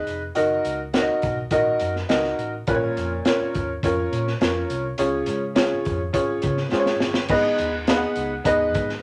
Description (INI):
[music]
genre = uptempo 1960s-style soul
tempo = 104 BPM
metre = 4/4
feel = straight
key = G# dorian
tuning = A4 = 438 Hz
[part]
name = clear upright piano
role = accompaniment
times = 0.0-8.9 s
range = G#2 to F#5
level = -24 LUFS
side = equal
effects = none
[part]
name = hollow-body short-scale fingered electric bass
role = bass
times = 0.1-9.0 s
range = E#1 to C#3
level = -34 LUFS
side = equal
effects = none
[part]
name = crunchy breakbeat drum kit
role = drums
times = 0.1-9.0 s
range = crash cymbal, hi-hat, kick drum, snare drum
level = -28 LUFS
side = equal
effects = none
[sound]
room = light reverb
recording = none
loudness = -23 LUFS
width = mono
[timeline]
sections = 0.0-7.3 A section; 7.3-9.0 B section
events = drum fill 6.7-7.3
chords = 0.4 D#m/F#; 2.7 A#m; 5.0 C#; 7.3 G#m